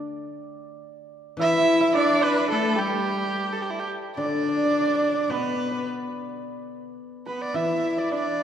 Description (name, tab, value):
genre	chinese traditional, Chinese chamber ensemble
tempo	107 BPM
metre	2/4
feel	rubato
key	unclear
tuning	A4 = 441 Hz
part	hammered dulcimer	second line	0.0-8.4 s	G4 to E5	-30 LUFS	right 3 dB	none
part	guzheng	accompaniment	0.0-8.4 s	B2 to D4	-31 LUFS	left 3 dB	none
part	rich erhu	melody	1.4-8.4 s	E4 to E5	-25 LUFS	right 2 dB	none
part	bright horsehead fiddle	second line	1.4-8.4 s	G3 to E4	-26 LUFS	left 2 dB	none
room	wet concert hall reverb, RT60 2.3 s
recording	heard from further back in the room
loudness	-21 LUFS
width	side -9 dB against mid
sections	0.0-4.2 A section; 4.2-8.4 B section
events	none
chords	none